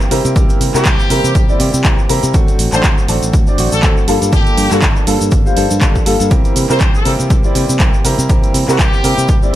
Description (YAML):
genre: filtered disco house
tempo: 121 BPM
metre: 4/4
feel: swing 57% on 16ths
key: C mixolydian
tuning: A4 = 442 Hz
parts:
  - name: direct-recorded clean electric guitar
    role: riff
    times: 0.0-9.6 s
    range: E3 to A4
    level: -24 LUFS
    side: right 3 dB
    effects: vintage 12-bit sampler grit, sidechain pumping
  - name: tube shaker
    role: percussion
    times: 0.0-9.5 s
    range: none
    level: -27 LUFS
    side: left 3 dB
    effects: sidechain pumping on perc
  - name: clear baby grand piano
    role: accompaniment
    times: 0.1-9.6 s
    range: F#3 to D5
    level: -18 LUFS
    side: left 1 dB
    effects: phaser, sidechain pumping
  - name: fingered electric bass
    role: bass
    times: 0.1-9.5 s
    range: G1 to C3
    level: -17 LUFS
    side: equal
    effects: sidechain pumping
  - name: punchy analog drum machine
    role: drums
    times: 0.1-9.4 s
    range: handclaps, hi-hat, shaker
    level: -20 LUFS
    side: right 1 dB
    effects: sidechain pumping on hats, sidechain pumping on perc, sidechain pumping on cymbals
  - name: electronic kick drum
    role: drums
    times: 0.4-9.4 s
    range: none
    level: -13 LUFS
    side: equal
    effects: none
  - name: clear trumpet section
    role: melody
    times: 0.7-9.4 s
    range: G4 to C5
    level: -21 LUFS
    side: left 2 dB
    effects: sidechain pumping, ping-pong delay
room: digital ambience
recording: none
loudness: -10 LUFS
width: side -13 dB against mid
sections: 0.0-9.6 A section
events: none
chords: 0.0 C7; 2.3 D7; 4.1 Gm9; 6.3 C7